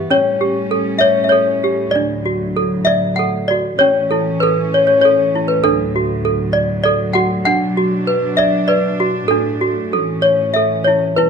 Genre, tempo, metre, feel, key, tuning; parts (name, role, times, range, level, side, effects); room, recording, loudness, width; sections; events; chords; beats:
children's music, lullaby; 98 BPM; 3/4; rubato; A4 = 440 Hz
toy piano; melody; 0.0-11.3 s; C#4 to F#5; -14 LUFS; equal
rich chamber string section; sustained chords; 0.0-11.3 s; D2 to D4; -21 LUFS; equal
wet recital hall reverb, RT60 1.4 s; dark, warm production; -13 LUFS; side -6 dB against mid
0.0-3.8 A section; 3.8-11.3 B section
0.1 A7; 1.9 D; 3.8 A; 5.6 D; 7.5 Bm; 9.3 D/A; 9.9 A
| 0.11 0.72 1.32 | 1.94 2.55 3.17 | 3.80 4.42 5.04 | 5.65 6.26 6.86 | 7.47 8.07 8.68 | 9.30 9.92 10.55 | 11.18